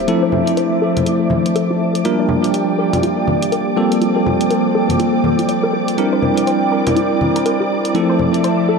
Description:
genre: deep house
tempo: 122 BPM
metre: 4/4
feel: swing 60% on 16ths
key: unclear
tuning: A4 = 443 Hz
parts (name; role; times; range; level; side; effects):
- airy breathy pad; sustained chords; 0.0-8.8 s; F3 to A5; -20 LUFS; equal; chorus
- bell-like tine electric piano; stabs; 0.0-8.8 s; F3 to Bb4; -17 LUFS; equal; fast stereo tremolo, vintage 12-bit sampler grit, ping-pong delay
- analog string pad; texture; 0.0-8.8 s; D5 to D6; -27 LUFS; right 1 dB; ensemble chorus
- warbly tape-like pad; texture; 0.0-8.8 s; F3 to Bb5; -23 LUFS; right 1 dB; chorus, built-in reverb
- analog pluck; arpeggios; 0.1-8.8 s; E4 to D5; -23 LUFS; left 4 dB; chorus, ping-pong delay
- electronic hi-hat; drums; 0.1-8.6 s; none; -30 LUFS; equal; none
- congas; percussion; 0.3-8.3 s; none; -23 LUFS; left 1 dB; none
room: wet plate reverb, RT60 1.7 s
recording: dreamy mix soaked in reverb, cassette tape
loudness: -14 LUFS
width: side -4 dB against mid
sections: 0.0-8.8 A section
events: filter sweep on synth arpeggio sound 0.0-8.8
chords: 0.1 Fmaj7; 2.0 Bb6; 3.8 Gm11; 6.0 C9; 7.9 Fmaj7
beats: | 0.08 0.57 1.06 1.56 | 2.05 2.54 3.03 3.52 | 4.01 4.51 5.00 5.49 | 5.98 6.47 6.96 7.46 | 7.95 8.44

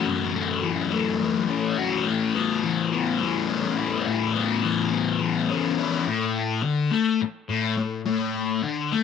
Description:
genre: rock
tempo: 210 BPM (eighths)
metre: 7/8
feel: straight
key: A major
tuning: A4 = 443 Hz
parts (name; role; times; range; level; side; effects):
- fuzz guitar; solo; 0.0-9.0 s; F#2 to F#4; -22 LUFS; left 6 dB; distortion, phaser
room: digital ambience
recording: none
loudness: -22 LUFS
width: side -6 dB against mid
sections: 0.0-6.1 A section; 6.1-9.0 B section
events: none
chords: 0.0 F#m7; 2.1 Aadd9; 6.1 Asus4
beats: | 0.05 0.34 0.63 0.91 1.20 1.49 1.77 | 2.06 2.35 2.63 2.92 3.21 3.49 3.78 | 4.07 4.35 4.64 4.92 5.21 5.50 5.78 | 6.07 6.36 6.64 6.93 7.21 7.50 7.79 | 8.07 8.36 8.64 8.93

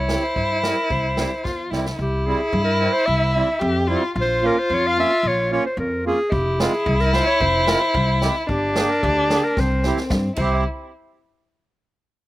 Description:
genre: klezmer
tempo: 111 BPM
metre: 2/4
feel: straight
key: unclear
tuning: A4 = 439 Hz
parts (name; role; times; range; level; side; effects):
- warm clarinet; melody; 0.0-10.6 s; G4 to F5; -23 LUFS; equal; none
- dark violin; second line; 0.0-10.6 s; C4 to G4; -22 LUFS; left 1 dB; slapback echo
- upright bass; bass; 0.0-10.6 s; F1 to G2; -24 LUFS; equal; none
- accordion; accompaniment; 0.1-10.6 s; G3 to G4; -25 LUFS; right 3 dB; none
- swinging big-band drum kit; drums; 0.1-2.0, 6.3-10.5 s; crash cymbal, kick drum, snare drum; -26 LUFS; right 1 dB; none
room: little or no reverb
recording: recorded outdoors, with no room sound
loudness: -18 LUFS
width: side -16 dB against mid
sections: 0.0-2.0 A section; 2.0-10.6 B section; 10.6-11.7 C section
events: drum fill 1.5-2.0, 9.6-10.6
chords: 0.0 C; 4.2 Bbm; 6.3 Fm; 8.5 Gm; 9.6 C; 10.6 N.C.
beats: 0.36 | 0.91 1.45 | 1.99 2.54 | 3.08 3.62 | 4.16 4.70 | 5.24 5.78 | 6.32 6.86 | 7.40 7.94 | 8.48 9.03 | 9.57 10.11

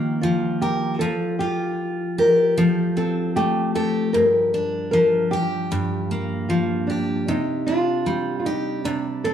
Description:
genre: acoustic pop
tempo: 76 BPM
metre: 4/4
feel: swing 60% on 16ths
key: G minor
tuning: A4 = 440 Hz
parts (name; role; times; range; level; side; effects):
- nylon-string guitar; melody; 0.0-9.3 s; D4 to Bb4; -22 LUFS; equal; none
- picked steel-string acoustic guitar; accompaniment; 0.0-9.3 s; G2 to Bb4; -22 LUFS; equal; none
room: moderate large studio reverb, RT60 1.0 s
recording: band playing live in one room, lossy compression artefacts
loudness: -19 LUFS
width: side -9 dB against mid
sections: 0.0-9.3 A section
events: none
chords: 0.0 Ebsus2; 1.0 Fadd9; 4.1 Gm7; 7.3 Csus2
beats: 0.21 | 1.00 1.78 2.57 3.35 | 4.14 4.92 5.71 6.49 | 7.28 8.06 8.85

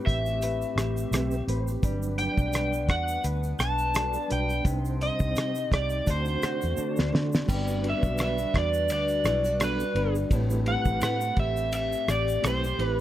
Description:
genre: indie pop, bedroom pop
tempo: 85 BPM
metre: 4/4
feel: swing 55% on 16ths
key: G major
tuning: A4 = 440 Hz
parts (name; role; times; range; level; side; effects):
- nylon-string guitar; accompaniment; 0.0-13.0 s; A2 to C5; -34 LUFS; left 3 dB; wide subtle chorus, warbly pitch drift
- warbly tape-like pad; sustained chords; 0.0-13.0 s; C3 to B4; -35 LUFS; equal; chorus, built-in reverb
- overdriven slide guitar; melody; 0.1-13.0 s; B4 to A5; -29 LUFS; equal; wide subtle chorus
- vintage muted fingered electric bass; bass; 0.1-13.0 s; G1 to D3; -30 LUFS; equal; none
- cloth-damped thuddy drum kit; drums; 0.1-13.0 s; crash cymbal, hi-hat, kick drum, ride cymbal, rim click, shaker, snare drum; -28 LUFS; equal; none
- egg shaker; percussion; 0.3-12.8 s; none; -45 LUFS; right 6 dB; none
- mellow tonewheel organ; accompaniment; 1.1-13.0 s; F#3 to C5; -34 LUFS; right 4 dB; chorus vibrato, fast rotary speaker
room: light reverb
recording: none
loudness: -24 LUFS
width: side -13 dB against mid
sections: 0.0-7.5 A section; 7.5-13.0 A section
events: drum fill 6.8-7.5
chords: 0.0 Am9; 1.8 Gmaj7; 4.7 Cm; 6.1 D7; 7.5 Gmaj7; 10.3 Am9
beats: 0.41 1.12 | 1.83 2.54 3.24 3.95 | 4.66 5.36 6.07 6.78 | 7.49 8.19 8.90 9.61 | 10.31 11.02 11.73 12.43

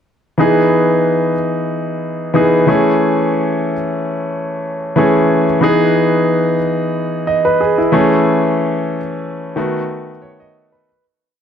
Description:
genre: soul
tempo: 92 BPM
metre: 4/4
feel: swing 54% on 16ths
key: E major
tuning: A4 = 440 Hz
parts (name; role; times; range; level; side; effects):
- clear concert grand piano; solo; 0.4-11.0 s; D#3 to D#5; -13 LUFS; equal; none
room: light reverb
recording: dark, warm production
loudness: -13 LUFS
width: side -8 dB against mid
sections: 0.4-10.9 verse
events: fade-out 8.2-10.9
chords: 0.4 Emaj7; 2.7 Amaj7; 5.6 Emaj7; 7.9 Amaj7; 9.6 B7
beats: | 0.39 1.04 1.70 2.35 | 3.01 3.66 4.32 4.97 | 5.63 6.28 6.94 7.59 | 8.25 8.90 9.56 10.21

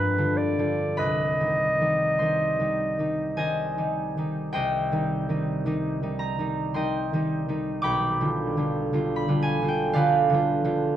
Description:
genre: classical, romantic duo for clarinet and harp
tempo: 48-58 BPM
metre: 3/4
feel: rubato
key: C minor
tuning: A4 = 440 Hz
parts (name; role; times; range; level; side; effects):
- clear clarinet; melody; 0.0-3.9 s; B4 to Eb5; -25 LUFS; equal; none
- concert harp; accompaniment; 0.0-11.0 s; B1 to D6; -24 LUFS; right 1 dB; none
room: light reverb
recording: worn, warbling old tape, cassette tape, warbly pitch drift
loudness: -23 LUFS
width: side -11 dB against mid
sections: 0.0-4.6 A section; 4.6-11.0 B section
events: none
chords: 0.0 G7; 1.0 Cm; 7.9 G7/B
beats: | 0.98 2.20 3.38 | 4.55 5.66 6.76 | 7.85 8.92 9.96

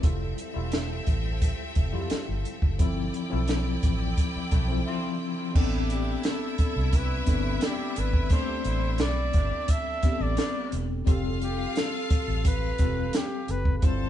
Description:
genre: lush 1970s-style soul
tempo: 87 BPM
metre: 4/4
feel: straight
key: A minor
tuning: A4 = 441 Hz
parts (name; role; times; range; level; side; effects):
- bright studio string section; second line; 0.0-14.1 s; C4 to A5; -37 LUFS; left 2 dB; none
- tine electric piano; accompaniment; 0.0-14.1 s; F3 to A5; -32 LUFS; left 3 dB; overdrive, fast stereo tremolo
- mellow French horn section; sustained chords; 0.0-14.1 s; F3 to E5; -44 LUFS; left 1 dB; none
- vintage muted fingered electric bass; bass; 0.0-14.1 s; E1 to F2; -29 LUFS; equal; none
- compact cocktail drum kit; drums; 0.0-14.0 s; crash cymbal, hi-hat, kick drum, snare drum; -26 LUFS; equal; none
- warm horn section; stabs; 4.5-10.9 s; E3 to A4; -39 LUFS; equal; none
- warm flugelhorn; melody; 5.9-14.1 s; G4 to E5; -33 LUFS; right 1 dB; none
room: light reverb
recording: band playing live in one room, nothing above 10.3 kHz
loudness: -24 LUFS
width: side -11 dB against mid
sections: 0.0-5.6 A section; 5.6-14.1 B section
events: band accent 2.8-5.6; tine electric piano fill 4.2-5.6; break 4.9-5.6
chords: 0.0 Fmaj9; 2.8 G13sus4; 5.6 Am11; 11.1 Fadd9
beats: | 0.03 0.72 1.42 2.10 | 2.80 3.49 4.18 4.87 | 5.55 6.25 6.93 7.62 | 8.31 9.00 9.69 10.38 | 11.07 11.76 12.45 13.14 | 13.83

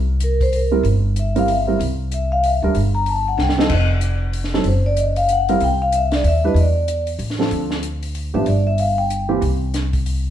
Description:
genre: jazz, small-group swing and bop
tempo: 189 BPM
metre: 3/4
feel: swing 61% on 8ths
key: C mixolydian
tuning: A4 = 440 Hz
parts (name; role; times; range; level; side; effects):
- upright bass; bass; 0.0-10.3 s; F1 to E2; -19 LUFS; equal; none
- vibraphone with soft mallets; melody; 0.2-9.3 s; Bb4 to Bb5; -20 LUFS; left 2 dB; none
- compact cocktail drum kit; drums; 0.2-10.2 s; crash cymbal, hi-hat, kick drum, snare drum; -26 LUFS; equal; none
- warm grand piano; accompaniment; 0.7-9.4 s; E3 to B4; -22 LUFS; right 4 dB; none
room: moderate studio reverb, RT60 1.0 s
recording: heard from further back in the room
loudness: -16 LUFS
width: side -10 dB against mid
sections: 0.0-10.3 A section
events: drum fill 3.4-3.7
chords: 0.0 C7; 2.8 N.C.; 3.4 C5; 3.7 N.C.; 4.7 F#maj7(no3); 5.6 C; 6.6 Dsus2/E; 7.2 Amadd11; 7.5 Dm7; 8.5 Gm6; 9.4 N.C.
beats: 0.21 0.53 | 0.85 1.17 1.48 | 1.80 2.12 2.44 | 2.75 3.07 3.39 | 3.71 4.02 4.34 | 4.66 4.97 5.29 | 5.61 5.93 6.25 | 6.56 6.88 7.20 | 7.52 7.83 8.15 | 8.47 8.79 9.11 | 9.42 9.74 10.06

